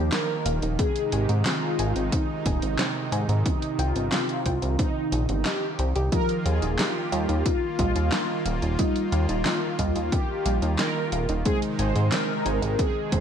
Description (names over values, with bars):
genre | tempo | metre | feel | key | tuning
synthwave | 90 BPM | 4/4 | straight | Eb major | A4 = 442 Hz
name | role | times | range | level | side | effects
mellow synth brass | melody | 0.0-13.2 s | Eb4 to C5 | -29 LUFS | left 1 dB | chorus, phaser, digital delay
brassy analog pad | sustained chords | 0.0-13.2 s | C3 to F4 | -31 LUFS | right 2 dB | chorus, sidechain pumping
soft round pluck | arpeggios | 0.0-13.2 s | C4 to Ab5 | -35 LUFS | left 2 dB | chorus, ping-pong delay
chorused synth bass | bass | 0.0-13.2 s | Eb1 to Ab2 | -25 LUFS | equal | sidechain pumping
pop drum kit | drums | 0.1-13.2 s | handclaps, hi-hat, snare drum | -30 LUFS | equal | small room ambience, gated reverb
electronic kick drum | drums | 0.8-13.2 s | none | -26 LUFS | equal | overdrive, small room ambience
mellow FM electric piano | stabs | 6.1-13.2 s | F3 to Eb5 | -31 LUFS | right 1 dB | chorus, ping-pong delay
room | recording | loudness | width
digital ambience | none | -22 LUFS | side -8 dB against mid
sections
0.0-13.2 A section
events
none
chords
0.0 Ebsus2; 0.8 Ab; 3.5 Cm; 6.1 Ebadd9; 11.5 Ab